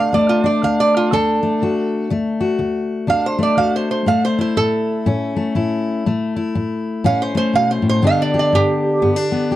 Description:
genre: acoustic country blues, solo or duo.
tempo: 122 BPM.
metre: 4/4.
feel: swing 61% on 8ths.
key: D major.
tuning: A4 = 442 Hz.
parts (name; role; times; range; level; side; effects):
lap resonator guitar; melody; 0.0-9.5 s; F4 to F5; -18 LUFS; right 3 dB; none.
fingerpicked steel-string acoustic guitar; accompaniment; 0.0-9.6 s; D2 to G4; -17 LUFS; left 2 dB; none.
room: light reverb.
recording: dry, close 1970s-style studio recording.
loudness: -15 LUFS.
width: side -14 dB against mid.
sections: 0.0-9.6 A section.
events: resonator guitar played with a steel bar solo 0.0-9.6.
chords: 0.0 D; 4.1 A; 8.0 G.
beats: | 0.13 0.62 1.12 1.61 | 2.11 2.60 3.10 3.59 | 4.08 4.58 5.07 5.56 | 6.06 6.55 7.04 7.54 | 8.03 8.52 9.01 9.50.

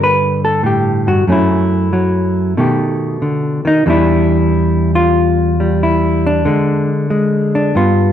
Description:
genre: solo jazz.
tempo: 93 BPM.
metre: 4/4.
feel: swing 67% on 8ths.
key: unclear.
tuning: A4 = 440 Hz.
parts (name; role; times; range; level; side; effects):
hollow-body jazz guitar; solo; 0.0-8.1 s; E2 to B4; -12 LUFS; equal; none.
room: moderate large studio reverb, RT60 1.2 s.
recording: dark, warm production.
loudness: -12 LUFS.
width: side -10 dB against mid.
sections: 0.0-8.1 A section.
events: hollow-body jazz guitar solo 0.0-8.1.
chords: 0.0 Gsus2; 1.3 F#m7; 2.6 B7alt; 3.9 Em7; 6.4 N.C..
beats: 0.63 | 1.28 1.92 2.57 3.21 | 3.86 4.51 5.15 5.80 | 6.45 7.09 7.74.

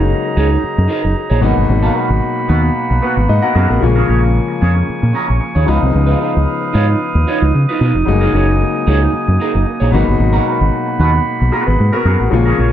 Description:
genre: disco.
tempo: 113 BPM.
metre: 4/4.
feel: straight.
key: G# dorian.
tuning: A4 = 441 Hz.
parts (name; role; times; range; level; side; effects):
clear grand piano; accompaniment; 0.0-12.7 s; B2 to F#5; -19 LUFS; left 7 dB; none.
warm woodwind section; sustained chords; 0.0-12.7 s; A#3 to D#6; -22 LUFS; right 3 dB; none.
fingered electric bass; bass; 0.0-12.7 s; E#1 to C#3; -13 LUFS; equal; none.
electric guitar through a small old amp; accompaniment; 0.1-12.7 s; B3 to C#5; -19 LUFS; right 4 dB; phaser.
room: light reverb, small room ambience.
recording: dark, warm production.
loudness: -12 LUFS.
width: side -11 dB against mid.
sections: 0.0-12.7 A section.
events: grand piano fill 2.8-3.8.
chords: 0.0 F#69; 1.4 G#m9; 3.8 A#m7; 5.7 C#9; 8.1 F#69; 9.9 G#m9.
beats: 0.10 0.63 1.16 | 1.69 2.23 2.76 3.29 | 3.82 4.35 4.89 5.42 | 5.95 6.48 7.01 7.54 | 8.07 8.61 9.14 9.67 | 10.20 10.73 11.26 11.79 | 12.32.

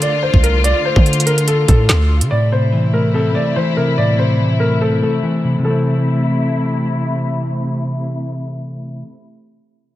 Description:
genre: hip hop, drill.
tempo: 144 BPM.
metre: 4/4.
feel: half-time.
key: A minor.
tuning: A4 = 440 Hz.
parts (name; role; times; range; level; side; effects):
dark grand piano; melody; 0.0-6.9 s; A4 to D5; -20 LUFS; equal; low-pass filter, digital delay.
warm studio string section; sustained chords; 0.0-9.1 s; C3 to F4; -23 LUFS; left 2 dB; low-pass filter.
hard-hitting 808-style bass; bass; 0.0-2.3 s; C2 to D3; -15 LUFS; equal; none.
drill drum kit; drums; 0.0-2.3 s; handclaps, hi-hat, kick drum, snare drum; -14 LUFS; equal; none.
mellow electric guitar; accompaniment; 2.3-9.1 s; A2 to C4; -16 LUFS; left 1 dB; spring reverb, low-pass filter.
room: little or no reverb.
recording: none.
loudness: -13 LUFS.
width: side -14 dB against mid.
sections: 0.0-2.3 A section; 2.3-5.6 B section; 5.6-9.0 C section.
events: none.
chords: 0.0 Dm; 2.3 Am.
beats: 0.23 | 0.64 1.06 1.48 1.89 | 2.31 2.73 3.14 3.56 | 3.98 4.39 4.81 5.23 | 5.64 6.06 6.48 6.89 | 7.31 7.73 8.14 8.56.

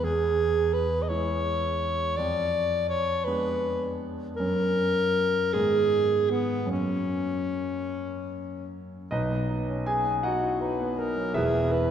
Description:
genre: classical, romantic duo for alto saxophone and grand piano.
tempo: 49-57 BPM (dotted quarters).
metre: 6/8.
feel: rubato.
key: B major.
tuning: A4 = 440 Hz.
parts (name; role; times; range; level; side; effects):
clear alto saxophone; melody; 0.0-11.9 s; B3 to D#5; -26 LUFS; equal; none.
clear concert grand piano; accompaniment; 0.0-11.9 s; E1 to G#5; -28 LUFS; equal; none.
room: wet church reverb, RT60 2.7 s.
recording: recorded in a church or concert hall.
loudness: -24 LUFS.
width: side -9 dB against mid.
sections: 0.0-9.1 A section; 9.1-11.9 B section.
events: none.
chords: 0.0 C#m/E; 2.2 Fdim7; 4.4 F#; 5.5 G#m; 6.7 F#; 9.1 B; 11.4 E.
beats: | 0.03 1.09 | 2.17 3.26 | 4.38 5.54 | 6.70 7.90 | 9.11 10.24 | 11.36.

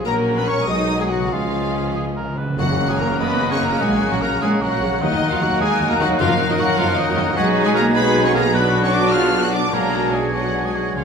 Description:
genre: classical, dramatic, fast romantic movement for symphony orchestra.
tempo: 92-104 BPM (dotted quarters).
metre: 6/8.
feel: rubato.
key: F# major.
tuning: A4 = 440 Hz.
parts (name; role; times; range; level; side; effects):
clear symphonic violin section; second line; 0.0-11.0 s; C#4 to G#4; -28 LUFS; left 3 dB; none.
mellow hollow concert flute; second line; 0.0-11.0 s; E#4 to G#6; -27 LUFS; left 2 dB; none.
warm cor anglais; second line; 0.0-11.0 s; D#4 to F#5; -27 LUFS; right 2 dB; none.
rich symphonic viola section; accompaniment; 0.0-11.0 s; C#3 to B3; -26 LUFS; right 1 dB; none.
warm bassoon; accompaniment; 0.0-11.0 s; F#3 to D#4; -30 LUFS; right 1 dB; none.
mellow French horn section; sustained chords; 0.0-11.0 s; D#3 to A#4; -27 LUFS; left 4 dB; none.
mellow trombone section; sustained chords; 0.0-11.0 s; E#3 to D#4; -30 LUFS; right 4 dB; none.
concert harp; arpeggios; 0.0-11.0 s; F#2 to F#5; -28 LUFS; left 5 dB; none.
clear symphonic violin section; melody; 0.1-11.0 s; D#5 to F#6; -25 LUFS; left 3 dB; none.
bright clarinet; second line; 0.1-11.0 s; E#4 to F#5; -29 LUFS; left 1 dB; none.
warm trumpet; stabs; 0.1-11.0 s; E#4 to D#5; -28 LUFS; right 2 dB; none.
mellow tuba; bass; 0.1-11.0 s; F#1 to D#2; -28 LUFS; right 3 dB; none.
rich symphonic double bass section; bass; 0.1-11.0 s; F#1 to F#2; -29 LUFS; right 4 dB; none.
warm symphonic cello section; bass; 0.1-11.0 s; D#3 to F#4; -26 LUFS; right 2 dB; none.
cymbal swell and tam-tam; percussion; 0.1-4.2 s; none; -34 LUFS; equal; none.
timpani; percussion; 1.3-3.2, 6.2-6.7, 11.0 s; F#2 to C#3; -29 LUFS; right 1 dB; none.
room: wet recital hall reverb, RT60 1.5 s.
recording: minimal, uncompressed stereo recording.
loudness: -16 LUFS.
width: side -6 dB against mid.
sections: 0.0-2.6 A section; 2.6-11.0 B section.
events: timpani fill 1.3-2.6; band accent 2.6-3.0.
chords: 0.1 F#/A#; 0.7 G#m7/B; 1.3 C#; 2.6 F#; 3.8 F#/A#; 5.0 D#m; 6.2 D#m/F#; 7.4 B6; 8.5 Bm; 9.7 G#m7b5/B.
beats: | 0.06 0.68 | 1.32 1.96 | 2.59 3.20 | 3.81 4.42 | 5.02 5.61 | 6.20 6.78 | 7.37 7.95 | 8.54 9.13 | 9.72 10.33 | 10.96.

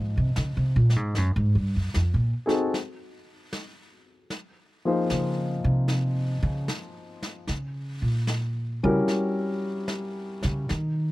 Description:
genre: jazz.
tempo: 76 BPM.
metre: 4/4.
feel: swing 68% on 8ths.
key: unclear.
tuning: A4 = 440 Hz.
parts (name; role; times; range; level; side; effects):
warm concert grand piano; accompaniment; 0.0-10.7 s; F3 to C5; -27 LUFS; left 2 dB; none.
upright bass; bass; 0.0-11.1 s; F2 to D#3; -24 LUFS; equal; none.
snare drum and brushed snare drum; drums; 0.4-11.1 s; none; -36 LUFS; equal; none.
room: little or no reverb.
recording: dry, close 1970s-style studio recording.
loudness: -24 LUFS.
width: side -18 dB against mid.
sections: 0.0-11.1 A section.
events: upright bass solo 0.0-11.1.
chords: 0.0 Bbm9; 1.1 Ebmadd9; 2.7 N.C.; 4.3 Dbmaj9; 7.5 Gb7b9.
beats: 0.35 | 1.14 1.93 2.72 3.51 | 4.30 5.09 5.89 6.68 | 7.48 8.28 9.08 9.89 | 10.69.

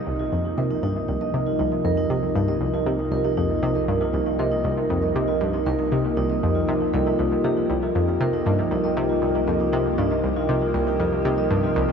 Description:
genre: ambient, sequencer-driven space music.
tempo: 118 BPM.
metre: 4/4.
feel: straight.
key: unclear.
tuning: A4 = 441 Hz.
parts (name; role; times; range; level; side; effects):
evolving wavetable pad; sustained chords; 0.0-11.9 s; F3 to G4; -25 LUFS; left 1 dB; chorus, built-in reverb.
vibraphone with medium mallets; arpeggios; 0.0-11.9 s; Eb4 to Eb5; -25 LUFS; right 2 dB; auto-pan, analog delay.
analog drone; bass; 0.6-11.9 s; C2; -33 LUFS; equal; chorus.
analog pluck; riff; 0.1-11.8 s; C2 to C3; -25 LUFS; left 1 dB; chorus, cassette tape, analog delay.
room: wet huge ambient reverb, RT60 8.0 s.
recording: in a vast, echoing space, nothing above 7.8 kHz.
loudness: -20 LUFS.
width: side -6 dB against mid.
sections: 0.0-11.9 A section.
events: none.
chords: 0.0 Cm7.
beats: 0.07 0.58 1.09 | 1.59 2.10 2.61 3.12 | 3.63 4.14 4.65 5.15 | 5.66 6.17 6.68 7.19 | 7.70 8.21 8.71 9.22 | 9.73 10.24 10.75 11.26 | 11.76.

